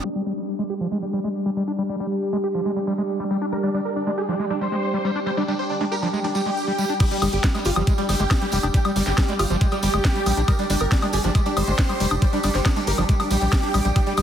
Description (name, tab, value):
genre	psychedelic trance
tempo	138 BPM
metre	4/4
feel	straight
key	unclear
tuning	A4 = 441 Hz
part	overtone-sweeping drone	sustained chords	0.0-14.2 s	G3	-29 LUFS	right 1 dB	chorus, built-in reverb, sidechain pumping
part	screaming distorted acid line	riff	0.0-14.2 s	F3 to G4	-26 LUFS	moving between left 4 dB and right 3 dB	distortion, chorus, auto-pan, sidechain pumping, ping-pong delay
part	tambourine	percussion	0.0-14.2 s	none	-36 LUFS	right 4 dB	none
part	warbly tape-like pad	texture	0.0-14.2 s	D4 to D6	-30 LUFS	right 1 dB	chorus, built-in reverb, sidechain pumping
part	dense compressed supersaw	melody	3.5-14.2 s	G3 to C5	-27 LUFS	right 1 dB	phaser, sidechain pumping, ping-pong delay
part	drum and bass drum kit	drums	7.0-14.2 s	crash cymbal, hi-hat, snare drum, woodblock	-27 LUFS	left 1 dB	overdrive
part	electronic kick drum	drums	7.0-14.0 s	none	-20 LUFS	equal	none
part	tight sequencer bass	bass	7.2-14.2 s	F1 to Bb1	-23 LUFS	equal	tube saturation
room	moderate lush hall reverb, RT60 1.8 s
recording	heavily compressed radio sound, multiband compression, low-pass filter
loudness	-20 LUFS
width	side -9 dB against mid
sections	0.0-7.0 A section; 7.0-14.2 B section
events	filter sweep on synth drone 0.0-7.0; filter sweep 0.0-7.0; drop 7.0-14.2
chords	0.0 G5